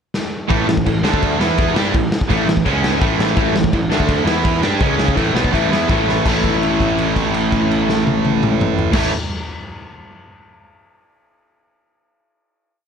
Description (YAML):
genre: punk rock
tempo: 166 BPM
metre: 4/4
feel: straight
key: A mixolydian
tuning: A4 = 440 Hz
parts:
  - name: raw garage drum kit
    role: drums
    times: 0.1-9.0 s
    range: crash cymbal, kick drum, snare drum, toms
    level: -19 LUFS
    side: left 1 dB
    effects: none
  - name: distorted electric guitar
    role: riff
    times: 0.5-9.1 s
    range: A2 to G4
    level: -20 LUFS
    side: right 13 dB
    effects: overdrive
  - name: raw garage guitar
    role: riff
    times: 0.5-9.1 s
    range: A2 to G4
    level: -22 LUFS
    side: left 15 dB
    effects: overdrive
  - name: raw garage guitar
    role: riff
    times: 0.5-9.1 s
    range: A2 to G4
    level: -23 LUFS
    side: right 1 dB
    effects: overdrive
  - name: fuzz picked electric bass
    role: bass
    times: 0.5-9.1 s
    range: A1 to G2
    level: -22 LUFS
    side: equal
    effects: overdrive
room: little or no reverb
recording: none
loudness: -14 LUFS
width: side -7 dB against mid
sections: 0.0-0.5 pickup bar; 0.5-6.2 riff; 6.2-9.2 final chord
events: drum fill 0.1-0.5, 6.1; held note 6.2-8.9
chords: 0.5 A5; 1.0 D5; 1.4 E5; 1.7 A5; 2.6 C#5; 3.0 A5; 3.9 D5; 4.3 E5; 4.6 G5; 4.8 C#5; 5.2 A5; 6.2 A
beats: 0.12 | 0.48 0.85 1.21 1.57 | 1.93 2.29 2.65 3.00 | 3.36 3.72 4.08 4.44 | 4.80 5.16 5.52 5.88 | 6.25 6.61 6.97 7.33 | 7.70 8.06 8.43 8.79